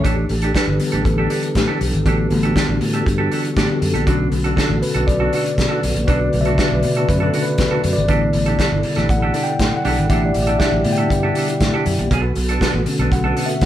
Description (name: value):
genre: disco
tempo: 119 BPM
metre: 4/4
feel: straight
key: unclear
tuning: A4 = 441 Hz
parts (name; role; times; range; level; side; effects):
- clean electric guitar; accompaniment; 0.0-13.7 s; B3 to A4; -24 LUFS; right 4 dB; none
- mellow tine electric piano; accompaniment; 0.0-13.7 s; C#3 to G5; -20 LUFS; left 2 dB; medium stereo tremolo
- mellow tonewheel organ; sustained chords; 0.0-13.7 s; B2 to B4; -25 LUFS; left 1 dB; chorus vibrato, fast rotary speaker
- fingered electric bass; bass; 0.0-13.7 s; G1 to B2; -21 LUFS; equal; none
- warm soul drum kit; drums; 0.0-13.7 s; hi-hat, kick drum, snare drum; -22 LUFS; equal; none
room: moderate studio reverb, RT60 0.7 s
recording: band playing live in one room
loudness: -15 LUFS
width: side -12 dB against mid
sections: 0.0-13.7 A section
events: tine electric piano solo 0.0-13.7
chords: 0.0 A7sus4; 4.1 Bm7; 8.1 A7sus4; 12.1 Bm7